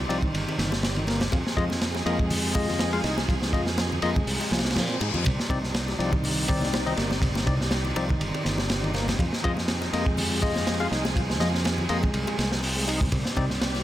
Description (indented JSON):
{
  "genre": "breakbeat, breaks",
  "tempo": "122 BPM",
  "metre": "4/4",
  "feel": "swing 55% on 16ths",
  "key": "unclear",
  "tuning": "A4 = 439 Hz",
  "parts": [
    { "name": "warm studio string section", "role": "sustained chords", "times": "0.0-13.8 s", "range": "C3 to D5", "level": "-33 LUFS", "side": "right 1 dB", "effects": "sidechain pumping" },
    { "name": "modern bright fingered electric bass", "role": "bass", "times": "0.0-13.8 s", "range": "G1 to Bb2", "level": "-29 LUFS", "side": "equal", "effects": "tube saturation" },
    { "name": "tonewheel organ", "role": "riff", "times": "0.1-13.5 s", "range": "C3 to Eb4", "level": "-32 LUFS", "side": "equal", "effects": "chorus vibrato, tube saturation, ping-pong delay" },
    { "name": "barky tine electric piano", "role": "stabs", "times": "0.1-13.4 s", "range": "Ab3 to F5", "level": "-32 LUFS", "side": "left 5 dB", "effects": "ping-pong delay" },
    { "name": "crunchy breakbeat drum kit", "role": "drums", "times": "0.1-13.8 s", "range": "hi-hat, kick drum, ride cymbal, snare drum", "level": "-27 LUFS", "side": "equal", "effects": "none" },
    { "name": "bongos and congas", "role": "percussion", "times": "0.1-13.8 s", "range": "none", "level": "-37 LUFS", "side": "left 3 dB", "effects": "none" },
    { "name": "reverse cymbal", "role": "sound effects", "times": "4.7-5.3 s", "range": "none", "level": "-35 LUFS", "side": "left 6 dB", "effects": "none" }
  ],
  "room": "small room ambience",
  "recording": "none",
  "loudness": "-23 LUFS",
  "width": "side -13 dB against mid",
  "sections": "0.0-13.8 A section",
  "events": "kick drops out 4.3-5.3; reverse cymbal 4.7-5.3",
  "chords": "0.0 Cmadd9; 1.3 Fm7; 5.3 Cmadd9; 9.2 Fm7; 13.1 Cmadd9"
}